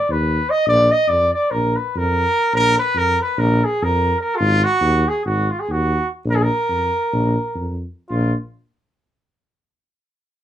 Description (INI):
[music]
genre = balkan folk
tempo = 289 BPM (eighths)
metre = 9/8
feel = straight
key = Bb phrygian dominant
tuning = A4 = 440 Hz
[part]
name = dark trumpet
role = melody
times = 0.0-8.3 s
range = F4 to Eb5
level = -18 LUFS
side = right 1 dB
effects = none
[part]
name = dark tuba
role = bass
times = 0.1-8.3 s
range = Ab1 to F2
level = -20 LUFS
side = equal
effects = none
[sound]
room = light reverb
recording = band playing live in one room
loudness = -16 LUFS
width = side -11 dB against mid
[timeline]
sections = 0.0-8.1 A section; 8.1-10.0 B section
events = none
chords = 0.0 Abm (rootless); 0.7 Bb5; 4.4 Ab5; 6.2 Bb5